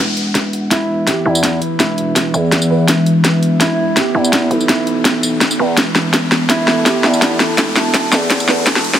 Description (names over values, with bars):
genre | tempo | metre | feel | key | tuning
half-time drum and bass | 166 BPM | 4/4 | swing 54% on 16ths, half-time | unclear | A4 = 440 Hz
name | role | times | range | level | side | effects
deep dark ambient pad | sustained chords | 0.0-9.0 s | E3 to A5 | -18 LUFS | equal | chorus, built-in reverb, vintage 12-bit sampler grit, sidechain pumping
growling 808-style bass | bass | 0.0-9.0 s | E1 to E2 | -20 LUFS | equal | high-pass filter
riser | sound effects | 0.0-9.0 s | none | -25 LUFS | left 1 dB | none
drum and bass drum kit | drums | 0.2-9.0 s | hi-hat, snare drum, tambourine | -15 LUFS | equal | overdrive
electronic kick drum | drums | 0.3-8.7 s | none | -26 LUFS | left 1 dB | none
felt-muted upright piano | arpeggios | 0.7-9.0 s | E4 to B4 | -20 LUFS | right 2 dB | low-pass filter, tape echo
room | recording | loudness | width
moderate lush hall reverb, RT60 2.1 s | high-pass filter | -12 LUFS | side -10 dB against mid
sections
0.0-9.0 A section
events
build-up 0.0-9.0; drum fill 0.0-9.0; riser 0.0-9.0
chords
0.0 E5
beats
0.35 0.71 1.07 | 1.44 1.80 2.16 2.52 | 2.88 3.24 3.61 3.97 | 4.33 4.69 5.05 5.41 | 5.77 6.14 6.50 6.86 | 7.22 7.58 7.94 8.30 | 8.67